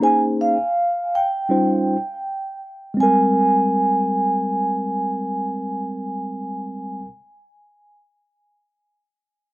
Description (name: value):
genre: hip hop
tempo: 81 BPM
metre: 4/4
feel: swing 59% on 16ths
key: Ab major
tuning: A4 = 439 Hz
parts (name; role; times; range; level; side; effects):
- vibraphone with soft mallets; melody; 0.0-7.0 s; F5 to Ab5; -21 LUFS; right 1 dB; none
- mellow tine electric piano; accompaniment; 0.0-7.1 s; G3 to C5; -21 LUFS; equal; slow stereo tremolo
room: light reverb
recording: worn, warbling old tape, cassette tape, warbly pitch drift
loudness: -18 LUFS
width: side -19 dB against mid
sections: 0.0-3.0 A section; 3.0-5.9 B section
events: none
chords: 0.0 Bbm11; 1.5 Eb13; 3.0 Abmaj9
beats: | 0.02 0.76 1.50 2.24 | 2.98 3.72 4.46 5.20